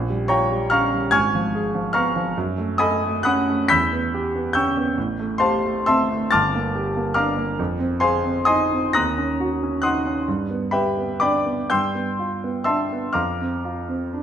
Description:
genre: classical, impressionist solo piano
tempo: 40-49 BPM (dotted quarters)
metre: 6/8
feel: rubato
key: unclear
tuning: A4 = 441 Hz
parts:
  - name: clear grand piano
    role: solo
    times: 0.0-14.2 s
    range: G1 to B6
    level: -19 LUFS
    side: equal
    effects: none
room: wet recital hall reverb, RT60 1.2 s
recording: none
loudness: -19 LUFS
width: side -9 dB against mid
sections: 0.0-14.2 A section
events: none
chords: 0.0 Bbm6; 1.1 Abm6; 2.4 Gbm6; 3.7 Em6; 5.0 Am7; 6.3 Gm7; 7.6 Fm7; 9.0 Ebm7; 10.3 G; 11.7 G9; 13.2 F5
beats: 1.11 | 2.35 3.70 | 4.96 6.33 | 7.58 8.95 | 10.26 11.71 | 13.15

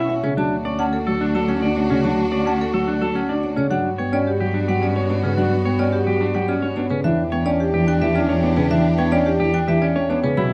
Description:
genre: classical, minimalist pattern music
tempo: 108 BPM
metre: 3/4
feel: straight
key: unclear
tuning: A4 = 444 Hz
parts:
  - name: dark French horn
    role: second line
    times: 0.0-10.5 s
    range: C#4 to F#4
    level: -30 LUFS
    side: equal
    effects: none
  - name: dark concert grand piano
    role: accompaniment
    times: 0.0-10.5 s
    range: C#3 to E4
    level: -25 LUFS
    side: equal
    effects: none
  - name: clear chamber string section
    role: sustained chords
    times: 0.0-10.5 s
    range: B3 to G4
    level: -33 LUFS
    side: equal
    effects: none
  - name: electric guitar at the edge of break-up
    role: arpeggios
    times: 0.0-10.5 s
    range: C#4 to E5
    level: -28 LUFS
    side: equal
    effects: none
  - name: warm cello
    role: bass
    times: 0.0-10.5 s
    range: D2 to B2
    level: -26 LUFS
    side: equal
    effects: none
  - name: marimba with hard mallets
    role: melody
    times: 0.1-10.5 s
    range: G4 to C#6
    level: -28 LUFS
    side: equal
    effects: none
  - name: silver concert flute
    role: arpeggios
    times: 0.8-9.2 s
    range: G5 to A5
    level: -32 LUFS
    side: equal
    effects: none
room: light reverb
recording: dark, warm production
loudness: -20 LUFS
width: mono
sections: 0.0-10.5 A section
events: none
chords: 0.4 D; 3.7 Gmaj7; 7.0 Em7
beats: | 0.38 0.93 1.49 | 2.04 2.60 3.15 | 3.71 4.27 4.82 | 5.38 5.93 6.49 | 7.04 7.60 8.15 | 8.71 9.27 9.82 | 10.38

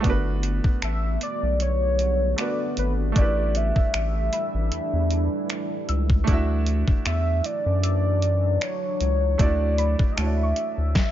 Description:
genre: contemporary R&B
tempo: 77 BPM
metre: 4/4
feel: swing 54% on 16ths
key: unclear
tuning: A4 = 440 Hz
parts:
  - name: clear baby grand piano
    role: accompaniment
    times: 0.0-11.0 s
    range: A3 to E5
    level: -31 LUFS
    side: right 5 dB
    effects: none
  - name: deep dark ambient pad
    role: sustained chords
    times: 0.0-10.9 s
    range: D3 to F#4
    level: -32 LUFS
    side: right 1 dB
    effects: chorus, built-in reverb, sidechain pumping
  - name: round analog bass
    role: bass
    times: 0.0-10.9 s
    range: G1 to F#2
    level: -23 LUFS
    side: equal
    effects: none
  - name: detuned 8-bit digital drum machine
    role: drums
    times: 0.0-11.1 s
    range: finger snaps, hi-hat, kick drum, snare drum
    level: -23 LUFS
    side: equal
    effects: none
  - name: soft round pluck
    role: texture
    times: 0.0-11.1 s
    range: F#5 to A6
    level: -40 LUFS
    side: left 1 dB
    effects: chorus, tape echo
  - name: warm velvety synth lead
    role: melody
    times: 0.8-11.1 s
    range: B4 to E5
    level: -27 LUFS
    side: equal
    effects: chorus, tape echo
room: digital ambience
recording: nothing above 7.5 kHz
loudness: -21 LUFS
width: side -12 dB against mid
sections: 0.0-11.1 A section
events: none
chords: 0.0 Gmaj9#11; 3.2 A7sus4; 6.3 Dmaj9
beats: | 0.04 0.82 1.60 2.38 | 3.16 3.94 4.72 5.50 | 6.28 7.05 7.83 8.61 | 9.39 10.17 10.95

